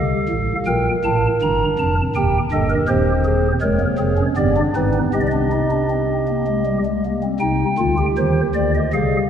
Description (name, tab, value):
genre	classical, baroque-style 4-part fugue for pipe organ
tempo	80 BPM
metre	3/4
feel	straight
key	C minor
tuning	A4 = 445 Hz
part	pipe organ, stopped flute	solo	0.0-9.2 s	Eb1 to Bb5	-16 LUFS	equal	none
room	wet church reverb, RT60 3.1 s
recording	none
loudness	-16 LUFS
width	side -8 dB against mid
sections	0.0-7.4 A section; 7.4-9.3 B section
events	none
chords	0.0 F/C; 0.7 Bb5; 2.1 Eb; 2.9 Cm/Eb; 3.6 Db/F; 4.4 G; 5.1 Cm